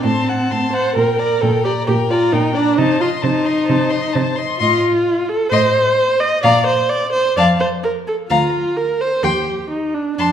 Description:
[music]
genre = quick classical-period movement for string quartet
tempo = 131 BPM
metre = 4/4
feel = straight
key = Bb major from 4.6 s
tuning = A4 = 440 Hz
[part]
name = warm violin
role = melody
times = 0.0-10.3 s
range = G5 to C6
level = -23 LUFS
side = left 7 dB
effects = none
[part]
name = dark violin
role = second line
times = 0.0-10.3 s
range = Bb4 to A5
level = -21 LUFS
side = left 3 dB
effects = none
[part]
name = dark viola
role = accompaniment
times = 0.0-10.3 s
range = C4 to Eb5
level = -17 LUFS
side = right 1 dB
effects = none
[part]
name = warm cello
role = bass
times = 0.0-10.3 s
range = D2 to C3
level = -21 LUFS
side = right 2 dB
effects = none
[sound]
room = wet recital hall reverb, RT60 1.5 s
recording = recorded in a church or concert hall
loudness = -14 LUFS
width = side -9 dB against mid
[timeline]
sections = 0.0-10.3 A section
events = none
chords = 0.0 F#dim/A; 1.0 Gm/Bb; 2.8 Adim/C; 4.6 F7/A; 6.4 Bb5; 7.4 F; 8.3 Bb/D; 9.2 Cm/Eb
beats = 0.04 0.50 | 0.96 1.42 1.88 2.33 | 2.79 3.24 3.70 4.16 | 4.61 5.07 5.52 5.98 | 6.44 6.90 7.37 7.83 | 8.30 8.77 9.23 9.70 | 10.18

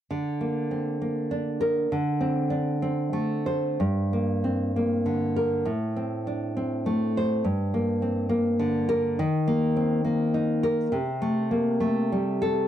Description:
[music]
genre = romantic piece for solo classical guitar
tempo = 85-106 BPM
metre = 3/4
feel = rubato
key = G minor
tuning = A4 = 440 Hz
[part]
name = nylon-string guitar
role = solo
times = 0.1-12.7 s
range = G2 to C5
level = -23 LUFS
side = equal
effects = none
[sound]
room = small room ambience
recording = dry, close 1970s-style studio recording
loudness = -23 LUFS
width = side -10 dB against mid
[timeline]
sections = 0.1-3.8 A section; 3.8-12.7 B section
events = none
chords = 0.1 Bbadd9/D; 1.9 D5; 3.8 Gm; 5.7 D5/A; 7.4 Gm; 9.2 Eb5; 10.9 Am7/C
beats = | 0.09 0.70 1.29 | 1.89 2.49 3.12 | 3.79 4.43 5.04 | 5.65 6.25 6.86 | 7.45 8.02 8.60 | 9.19 9.76 10.34 | 10.92 11.51 12.11

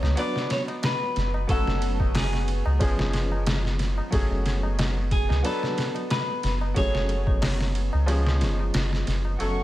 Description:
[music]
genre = trip hop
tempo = 91 BPM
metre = 4/4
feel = swing 54% on 16ths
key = F# harmonic minor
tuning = A4 = 439 Hz
[part]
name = clean electric guitar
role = melody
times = 0.0-9.0 s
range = G#4 to D5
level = -31 LUFS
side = equal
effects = tape echo
[part]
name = bright upright piano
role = accompaniment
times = 0.0-9.6 s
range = E#3 to B4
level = -31 LUFS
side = equal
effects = harmonic tremolo, tape echo
[part]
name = soft dub sub bass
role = bass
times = 0.0-9.6 s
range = F#1 to C#2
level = -25 LUFS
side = equal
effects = none
[part]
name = trip hop sampler-style drum kit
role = drums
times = 0.0-9.6 s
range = hi-hat, kick drum, ride cymbal, snare drum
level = -27 LUFS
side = equal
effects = high-pass filter on kick, high-pass filter on cymbals, high-pass filter on snare, high-pass filter on hats
[part]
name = tabla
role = percussion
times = 0.0-9.4 s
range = none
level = -40 LUFS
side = left 2 dB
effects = none
[part]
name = bowed-like drone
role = texture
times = 0.0-9.6 s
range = A3 to B3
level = -38 LUFS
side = equal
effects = built-in reverb
[part]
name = muted chamber string section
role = sustained chords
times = 9.4-9.6 s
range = A3 to C#6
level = -32 LUFS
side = right 2 dB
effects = none
[sound]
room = digital ambience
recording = none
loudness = -22 LUFS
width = side -15 dB against mid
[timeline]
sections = 0.0-9.4 A section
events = kick drops out 8.1-9.4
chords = 0.2 Bm/F#; 1.5 F#madd9; 2.8 C#/F#; 4.1 F#madd9; 5.4 Bm/F#; 6.8 F#madd9; 8.1 C#/F#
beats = 0.17 0.83 | 1.49 2.15 2.81 3.47 | 4.13 4.79 5.45 6.10 | 6.76 7.42 8.08 8.74 | 9.40

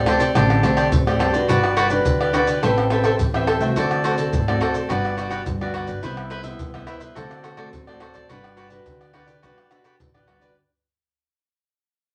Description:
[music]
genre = samba and choro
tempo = 106 BPM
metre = 4/4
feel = straight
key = G major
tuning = A4 = 440 Hz
[part]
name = cavaquinho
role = accompaniment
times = 0.0-10.6 s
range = D4 to G5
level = -25 LUFS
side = equal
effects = none
[part]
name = nylon-string guitar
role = accompaniment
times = 0.0-10.5 s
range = G2 to B4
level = -26 LUFS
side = equal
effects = none
[part]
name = upright bass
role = bass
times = 0.0-10.5 s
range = G1 to D3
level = -28 LUFS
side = equal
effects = none
[part]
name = pandeiro, tamborim, maracas and surdo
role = percussion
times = 0.1-10.6 s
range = none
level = -27 LUFS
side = equal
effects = none
[sound]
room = wet studio reverb, RT60 0.5 s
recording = none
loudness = -20 LUFS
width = mono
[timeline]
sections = 0.0-10.6 A section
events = fade-out 0.0-10.6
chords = 0.0 D7sus4; 1.5 Gmaj7; 2.6 Am9; 3.8 D7; 4.9 Gmaj7; 6.0 Cmaj7; 7.2 D7; 8.3 Gmaj7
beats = 0.36 0.93 | 1.49 2.06 2.63 3.20 | 3.77 4.33 4.90 5.47 | 6.04 6.60 7.17 7.74 | 8.30 8.87 9.43 10.00

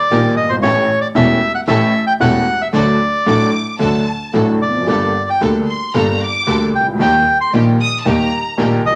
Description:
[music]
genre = tango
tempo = 113 BPM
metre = 4/4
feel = rubato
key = G harmonic minor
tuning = A4 = 440 Hz
[part]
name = bandoneon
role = melody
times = 0.0-9.0 s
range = C5 to C6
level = -18 LUFS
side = equal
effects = none
[part]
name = warm baby grand piano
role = accompaniment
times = 0.1-9.0 s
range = E1 to A4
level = -18 LUFS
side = equal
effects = none
[part]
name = dark studio string section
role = stabs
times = 0.1-8.8 s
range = Bb3 to Bb4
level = -27 LUFS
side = equal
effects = none
[part]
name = dark double bass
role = bass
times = 0.1-9.0 s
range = E1 to Eb2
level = -25 LUFS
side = equal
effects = none
[part]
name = clear studio violin section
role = second line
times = 3.3-8.7 s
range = A5 to Eb6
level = -24 LUFS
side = equal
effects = none
[sound]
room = wet studio reverb, RT60 0.8 s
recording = none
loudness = -15 LUFS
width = mono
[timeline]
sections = 0.0-9.0 A section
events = none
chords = 0.0 Eb; 0.6 A7; 2.7 D; 4.9 Gmadd9; 7.0 Eb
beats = 0.11 | 0.64 1.16 1.68 2.21 | 2.74 3.27 3.80 4.34 | 4.88 5.41 5.95 6.48 | 7.01 7.54 8.06 8.59

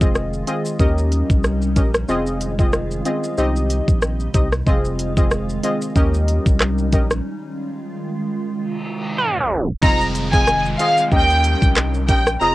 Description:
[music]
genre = dancehall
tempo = 93 BPM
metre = 4/4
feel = swing 56% on 16ths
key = F minor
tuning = A4 = 439 Hz
[part]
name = synth brass stab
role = accompaniment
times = 0.0-12.5 s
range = C4 to Eb5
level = -23 LUFS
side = equal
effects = chorus
[part]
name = glassy FM pad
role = sustained chords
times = 0.0-12.5 s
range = C3 to F4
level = -27 LUFS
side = equal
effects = ensemble chorus, built-in reverb, sidechain pumping
[part]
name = warm sub bass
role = bass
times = 0.0-12.5 s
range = F1 to Eb2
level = -22 LUFS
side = equal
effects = none
[part]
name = pop drum kit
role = drums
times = 0.0-12.5 s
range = crash cymbal, handclaps, hi-hat, kick drum, rim click, shaker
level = -17 LUFS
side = equal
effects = cassette tape
[part]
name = reverse cymbal and downlifter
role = sound effects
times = 8.7-12.5 s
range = none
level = -28 LUFS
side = equal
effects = none
[part]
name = twangy electric guitar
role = arpeggios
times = 9.2-10.0 s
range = Eb4 to C5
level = -22 LUFS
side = right 2 dB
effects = none
[part]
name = clear studio violin section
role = melody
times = 9.8-12.5 s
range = F5 to Bb5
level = -18 LUFS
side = equal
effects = none
[sound]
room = light reverb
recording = home recording on cassette, tape stop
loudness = -16 LUFS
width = side -17 dB against mid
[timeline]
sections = 0.0-9.8 A section; 9.8-12.5 B section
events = break 7.2-9.8; reverse cymbal 8.7-9.8; tape stop 9.2-9.8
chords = 0.0 Fm7; 0.8 Eb7; 2.1 Fm7; 3.4 Cm; 4.7 Fm7; 6.0 Eb7; 7.2 Fm7; 8.5 Cm; 9.8 Fm7; 11.1 Eb7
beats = 0.15 0.80 1.44 | 2.09 2.73 3.38 4.02 | 4.67 5.31 5.96 6.60 | 7.25 7.89 8.54 9.18 | 9.83 10.47 11.12 11.76 | 12.41

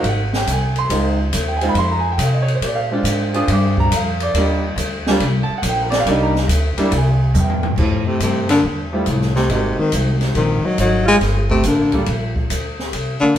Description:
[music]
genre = jazz, small-group swing and bop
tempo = 140 BPM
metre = 4/4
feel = swing 67% on 8ths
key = unclear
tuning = A4 = 436 Hz
[part]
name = warm concert grand piano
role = accompaniment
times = 0.0-13.4 s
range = G3 to Eb6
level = -20 LUFS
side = right 1 dB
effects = none
[part]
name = upright bass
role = bass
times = 0.0-13.4 s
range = G1 to C3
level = -19 LUFS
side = equal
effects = none
[part]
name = open jazz drum kit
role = drums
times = 0.0-13.4 s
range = crash cymbal, hi-hat, kick drum, ride cymbal, snare drum, toms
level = -23 LUFS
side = left 1 dB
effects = none
[part]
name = mellow baritone saxophone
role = melody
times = 7.8-13.4 s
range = A2 to Ab3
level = -17 LUFS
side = left 2 dB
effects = none
[part]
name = breathy alto saxophone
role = second line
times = 7.8-13.4 s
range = F3 to F4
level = -25 LUFS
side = right 2 dB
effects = none
[sound]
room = moderate stone room reverb, RT60 1.2 s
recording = band playing live in one room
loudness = -15 LUFS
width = side -10 dB against mid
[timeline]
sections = 0.0-7.8 A section; 7.8-13.4 B section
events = drum fill 7.3-7.8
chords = 0.0 Ab; 0.9 Dbmaj7; 2.6 Bb7; 4.3 Ebmaj7; 6.1 Cm7; 6.9 C; 7.8 Fmaj9; 9.5 Ab9; 11.2 Gmadd9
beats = 0.05 0.48 | 0.91 1.34 1.77 2.20 | 2.63 3.06 3.48 3.91 | 4.34 4.77 5.20 5.63 | 6.06 6.49 6.92 7.34 | 7.77 8.20 8.63 9.06 | 9.49 9.92 10.35 10.78 | 11.21 11.64 12.07 12.50 | 12.93 13.36

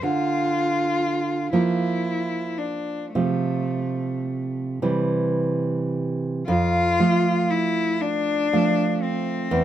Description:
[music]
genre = romantic duo for cello and classical guitar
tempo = 35-42 BPM (dotted quarters)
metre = 6/8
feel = rubato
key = F major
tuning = A4 = 440 Hz
[part]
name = warm cello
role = melody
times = 0.0-9.6 s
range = A3 to F4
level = -24 LUFS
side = left 3 dB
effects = none
[part]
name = nylon-string guitar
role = accompaniment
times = 0.0-9.6 s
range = E2 to Bb3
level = -23 LUFS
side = right 3 dB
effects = none
[sound]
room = moderate studio ambience, RT60 0.5 s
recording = none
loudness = -21 LUFS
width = side -11 dB against mid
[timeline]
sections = 0.0-6.5 A section; 6.5-9.6 B section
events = none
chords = 0.0 Bb/D; 3.2 F/C; 4.8 C; 6.5 F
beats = | 0.03 1.53 | 3.16 4.83 | 6.47 8.01 | 9.51

